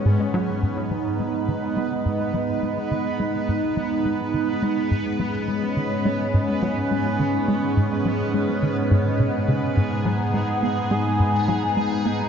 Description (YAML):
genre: ambient, sequencer-driven space music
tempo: 105 BPM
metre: 4/4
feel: straight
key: G# minor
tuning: A4 = 440 Hz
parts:
  - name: phased analog pad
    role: sustained chords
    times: 0.0-12.3 s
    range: G#2 to D#4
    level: -23 LUFS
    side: right 1 dB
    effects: phaser, chorus
  - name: bubbling stepped-filter texture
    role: texture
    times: 0.0-12.3 s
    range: B3 to B4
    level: -32 LUFS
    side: right 2 dB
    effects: chorus, built-in reverb
  - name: tight sequencer bass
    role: riff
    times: 0.1-12.2 s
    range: G#2 to B3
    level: -25 LUFS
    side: equal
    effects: ensemble chorus, tape echo
  - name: mellow horn-like synth lead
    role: melody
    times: 10.1-12.3 s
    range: F#5 to A#5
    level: -26 LUFS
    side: left 1 dB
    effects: lush chorus, tape echo
room: wet cathedral reverb, RT60 6.2 s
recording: in a vast, echoing space, nothing above 7.6 kHz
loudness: -20 LUFS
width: side -7 dB against mid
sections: 0.6-12.3 A section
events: filter sweep on analog synth bass 0.6-12.3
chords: 0.0 G#m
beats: 0.05 | 0.62 1.20 1.77 2.34 | 2.91 3.48 4.05 4.62 | 5.20 5.77 6.34 6.91 | 7.48 8.05 8.62 9.20 | 9.77 10.34 10.91 11.48 | 12.05